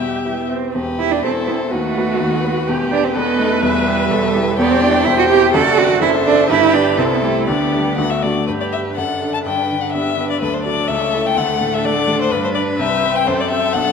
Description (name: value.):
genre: quick classical-period movement for piano quintet.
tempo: 125 BPM.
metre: 2/4.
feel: rubato.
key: E minor, G major from 4.6 s.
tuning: A4 = 440 Hz.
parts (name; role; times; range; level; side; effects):
rich violin; melody; 0.0-13.9 s; B4 to A5; -21 LUFS; left 7 dB; none.
warm cello; second line; 0.0-13.9 s; D3 to A4; -19 LUFS; right 7 dB; none.
warm violin; second line; 0.0-13.9 s; F#4 to D5; -24 LUFS; left 3 dB; none.
rich viola; accompaniment; 0.0-13.9 s; C4 to B4; -24 LUFS; right 4 dB; none.
warm baby grand piano; accompaniment; 0.0-13.9 s; E1 to B4; -20 LUFS; left 1 dB; none.
room: wet concert hall reverb, RT60 2.3 s.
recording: none.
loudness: -14 LUFS.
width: side -6 dB against mid.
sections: 0.8-8.5 A section; 8.5-13.9 B section.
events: none.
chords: 0.0 Em; 1.2 Am/E; 1.7 B7/D#; 2.7 Em; 3.2 B7/E; 3.6 Em; 4.6 C/E; 5.5 D7/F#; 6.5 G; 7.0 C; 7.5 G/D; 8.0 D; 8.5 G; 9.0 D/F#; 9.4 G; 10.4 D; 10.9 A/C#; 11.4 D5; 12.3 G; 12.8 Cmaj7; 13.3 F#dim.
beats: 0.26 | 0.75 1.24 | 1.72 2.20 | 2.68 3.16 | 3.63 4.11 | 4.58 5.05 | 5.53 6.01 | 6.49 6.97 | 7.47 7.97 | 8.47 8.96 | 9.45 9.93 | 10.41 10.90 | 11.38 11.85 | 12.32 12.80 | 13.27 13.74.